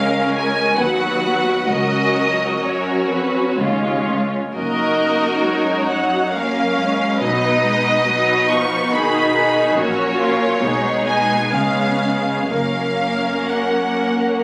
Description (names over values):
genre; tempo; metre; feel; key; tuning
classical, slow romantic movement for string orchestra; 59-73 BPM; 3/4; rubato; F# major; A4 = 440 Hz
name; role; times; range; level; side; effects
rich studio violin section; melody; 0.0-14.4 s; A#4 to C#6; -23 LUFS; equal; none
rich symphonic violin section; second line; 0.0-14.4 s; C#4 to D#5; -24 LUFS; equal; none
warm symphonic viola section; accompaniment; 0.0-14.4 s; D#3 to D#4; -24 LUFS; equal; none
rich symphonic cello section; bass; 0.0-14.4 s; C#2 to C#3; -28 LUFS; equal; none
dark studio double bass section; bass; 0.8-13.5 s; F#1 to D#2; -34 LUFS; equal; none
room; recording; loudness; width
wet recital hall reverb, RT60 1.4 s; recorded on a phone in the room, studio reverb, compression; -18 LUFS; mono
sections
0.0-14.4 A section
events
none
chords
0.0 C#; 0.8 B/D#; 1.7 F#/C#; 3.6 C#; 4.5 F#; 7.2 B; 9.8 F#/A#; 10.6 G#m/B; 11.5 C#7; 12.5 F#